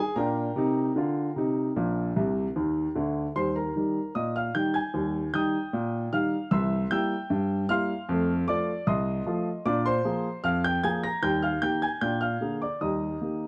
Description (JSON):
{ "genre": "ragtime piano", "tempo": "76 BPM", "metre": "2/4", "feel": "straight", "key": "Eb major", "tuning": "A4 = 440 Hz", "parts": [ { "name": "clear grand piano", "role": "solo", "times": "0.0-13.5 s", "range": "Bb1 to Bb6", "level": "-28 LUFS", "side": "equal", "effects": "none" } ], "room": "small room ambience", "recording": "dry, close 1970s-style studio recording", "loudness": "-28 LUFS", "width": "mono", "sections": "0.0-3.4 A section; 3.4-13.5 B section", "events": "grand piano fill 2.2-3.4", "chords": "0.2 Eb/Bb; 1.8 Bb; 3.4 Eb; 6.5 C7; 8.1 F7; 9.7 Bb7; 11.2 Eb; 12.0 Bb7; 12.8 Eb", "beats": "| 0.16 0.96 | 1.76 2.56 | 3.36 4.15 | 4.94 5.72 | 6.51 7.30 | 8.08 8.87 | 9.65 10.44 | 11.22 12.01 | 12.80" }